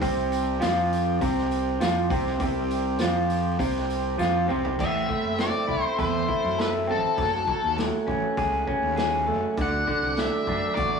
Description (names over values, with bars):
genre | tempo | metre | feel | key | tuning
psychedelic rock | 100 BPM | 4/4 | straight | A dorian from 4.8 s | A4 = 440 Hz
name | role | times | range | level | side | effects
overdriven combo organ | sustained chords | 0.0-11.0 s | F#3 to D6 | -36 LUFS | right 4 dB | none
electric guitar through a small old amp | riff | 0.0-11.0 s | A2 to A4 | -25 LUFS | equal | none
fuzz fingered electric bass | bass | 0.0-11.0 s | F#1 to F#2 | -30 LUFS | right 1 dB | overdrive
vintage drum kit | drums | 0.0-10.9 s | crash cymbal, hi-hat, kick drum, snare drum, toms | -31 LUFS | equal | none
tambourine | percussion | 0.0-4.6 s | none | -48 LUFS | left 5 dB | none
octave-fuzz lead guitar | melody | 4.8-11.0 s | A4 to F#5 | -27 LUFS | left 3 dB | distortion
room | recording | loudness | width
wet studio reverb, RT60 0.6 s | rough rehearsal-room recording, small room ambience | -22 LUFS | side -5 dB against mid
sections
0.0-4.8 A section; 4.8-11.0 B section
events
drum fill 4.2-4.8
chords
0.0 C5; 4.8 Am; 7.2 F#madd9; 9.6 D